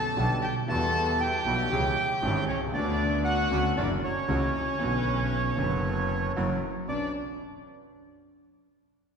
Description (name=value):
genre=tango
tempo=116 BPM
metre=4/4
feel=rubato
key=B minor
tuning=A4 = 436 Hz
part: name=bandoneon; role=melody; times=0.0-7.1 s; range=C#5 to A5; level=-30 LUFS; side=right 2 dB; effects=none
part: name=warm violin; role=second line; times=0.0-7.1 s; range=C#4 to A4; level=-34 LUFS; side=left 3 dB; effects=none
part: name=warm concert grand piano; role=accompaniment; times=0.2-7.1 s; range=F#1 to B4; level=-31 LUFS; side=equal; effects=none
part: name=bandoneon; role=stabs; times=0.2-7.1 s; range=G3 to B4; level=-38 LUFS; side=right 4 dB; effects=none
part: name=bright double bass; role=bass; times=0.2-7.1 s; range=F#1 to E2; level=-30 LUFS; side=right 1 dB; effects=none
room=wet concert hall reverb, RT60 2.3 s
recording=recorded in a church or concert hall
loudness=-25 LUFS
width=side -6 dB against mid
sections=0.0-6.9 A section; 6.9-8.9 B section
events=none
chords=0.0 G/B; 0.7 Emadd9; 1.7 C#m; 2.7 Bmadd9/D; 3.8 F#7; 4.8 Bmadd9; 6.4 F#7; 6.9 Bmadd9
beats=0.17 | 0.68 1.20 1.71 2.23 | 2.74 3.25 3.76 4.28 | 4.80 5.31 5.83 6.36 | 6.88